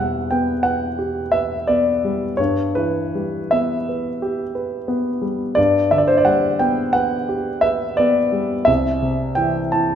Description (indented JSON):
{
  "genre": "classical, romantic nocturne for solo piano",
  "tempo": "58 BPM (dotted quarters)",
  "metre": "9/8",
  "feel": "rubato",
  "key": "G major from 5.6 s",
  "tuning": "A4 = 440 Hz",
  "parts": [
    { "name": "warm concert grand piano", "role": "solo", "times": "0.0-9.9 s", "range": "C2 to A5", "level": "-17 LUFS", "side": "equal", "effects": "none" }
  ],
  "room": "wet recital hall reverb, RT60 1.6 s",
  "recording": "minimal, uncompressed stereo recording",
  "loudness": "-17 LUFS",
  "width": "side -8 dB against mid",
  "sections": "0.0-9.9 A section",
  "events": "none",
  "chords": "0.0 Em; 2.4 Em/G; 5.6 G; 8.7 Am/C",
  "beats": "0.31 1.34 | 2.38 3.53 4.56 | 5.57 6.61 7.63 | 8.68 9.73"
}